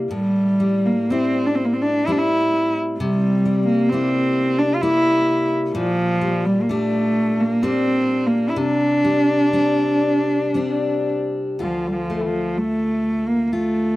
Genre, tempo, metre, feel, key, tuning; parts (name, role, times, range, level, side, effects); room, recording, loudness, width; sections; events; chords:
celtic folk; 56-66 BPM; 3/4; rubato; D minor; A4 = 440 Hz
fingerpicked steel-string acoustic guitar; accompaniment; 0.0-14.0 s; D2 to F4; -24 LUFS; left 2 dB
warm cello; melody; 0.1-14.0 s; E3 to F4; -18 LUFS; right 1 dB
light reverb; dry, close 1970s-style studio recording; -17 LUFS; side -17 dB against mid
0.0-11.6 A section; 11.6-14.0 B section
0.1 Am7; 3.0 C7; 5.7 Gm/Bb; 8.6 Csus2; 11.6 Dm